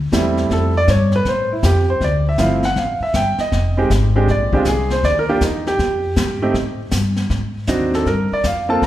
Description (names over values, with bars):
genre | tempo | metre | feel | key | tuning
jazz piano trio | 159 BPM | 4/4 | swing 66% on 8ths | unclear | A4 = 440 Hz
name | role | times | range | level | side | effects
upright bass | bass | 0.0-8.9 s | F1 to A2 | -19 LUFS | equal | none
clear baby grand piano | melody | 0.1-8.9 s | F3 to Bb5 | -18 LUFS | right 1 dB | none
jazz brush drum kit | drums | 0.1-8.9 s | brushed snare drum, hi-hat, kick drum, snare drum | -24 LUFS | left 2 dB | none
room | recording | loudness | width
moderate recital hall reverb, RT60 1.4 s | recorded in a church or concert hall | -15 LUFS | side -13 dB against mid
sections
0.0-2.0 A section; 2.0-8.9 A section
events
grand piano solo 0.0-8.9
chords
0.0 Fmaj9; 2.0 Dmadd9; 3.5 Fm9; 4.3 Bb9; 5.0 Ebadd9; 6.5 Gsus2; 7.3 G#7#11; 8.1 Gm9